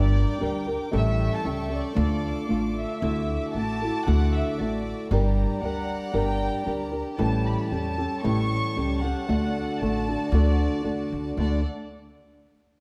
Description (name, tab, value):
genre	mexican folk, mariachi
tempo	115 BPM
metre	2/4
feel	straight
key	D harmonic minor, D major from 3.0 s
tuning	A4 = 437 Hz
part	dark studio violin section	melody	0.0-11.6 s	D5 to C#6	-36 LUFS	equal	none
part	nylon-string guitar	accompaniment	0.0-11.6 s	A2 to Bb4	-29 LUFS	equal	none
part	clear studio violin section	sustained chords	0.0-11.6 s	D4 to D6	-40 LUFS	equal	none
part	upright bass	bass	0.0-11.6 s	G1 to E2	-28 LUFS	equal	none
room	moderate concert hall reverb, RT60 1.7 s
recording	none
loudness	-26 LUFS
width	mono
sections	0.0-3.0 A section; 3.0-11.4 B section; 11.4-12.4 C section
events	none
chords	0.0 Gm; 0.9 A7; 2.0 Dm; 3.0 Dadd9; 5.1 Gm; 7.2 A7; 9.3 D